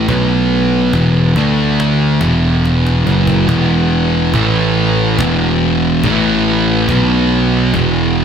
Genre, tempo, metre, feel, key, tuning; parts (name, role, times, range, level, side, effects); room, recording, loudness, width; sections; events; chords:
stoner and doom metal; 71 BPM; 4/4; straight; A4 = 440 Hz
deep rumbling drone; sustained chords; 0.0-8.2 s; B3 to F#5; -23 LUFS; right 2 dB; built-in reverb
fuzz guitar; riff; 0.0-8.2 s; E2 to D4; -13 LUFS; equal; distortion
fuzz picked electric bass; bass; 0.0-8.2 s; E1 to D2; -17 LUFS; right 1 dB; overdrive
cajon; drums; 0.1-7.9 s; -23 LUFS; equal
little or no reverb; -11 LUFS; side -7 dB against mid
0.0-3.5 A section; 3.5-8.2 B section
drum fill 2.6-3.5
0.1 B5; 0.9 E5; 1.4 D5; 2.2 E5; 4.3 A5; 5.2 E5; 6.0 A5; 6.9 B5; 7.7 E5